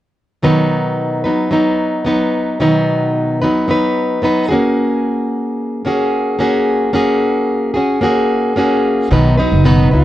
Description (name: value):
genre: pop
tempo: 111 BPM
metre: 4/4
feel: straight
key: B major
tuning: A4 = 442 Hz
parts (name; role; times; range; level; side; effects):
- fingerpicked plugged-in steel-string acoustic guitar; accompaniment; 0.4-10.0 s; B2 to B4; -13 LUFS; equal; none
- upright bass; bass; 9.1-10.0 s; F#1 to C#2; -12 LUFS; equal; none
- fingerpicked plugged-in steel-string acoustic guitar; melody; 9.4-10.0 s; D#4 to F#4; -19 LUFS; right 4 dB; none
room: little or no reverb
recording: worn, warbling old tape, cassette tape, warbly pitch drift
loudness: -13 LUFS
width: side -14 dB against mid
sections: 0.4-9.1 A section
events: none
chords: 0.4 B; 4.5 F#add9/A#; 9.1 B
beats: | 0.43 0.98 1.52 2.06 | 2.60 3.15 3.69 4.23 | 4.77 5.32 5.86 6.40 | 6.94 7.49 8.03 8.57 | 9.11 9.65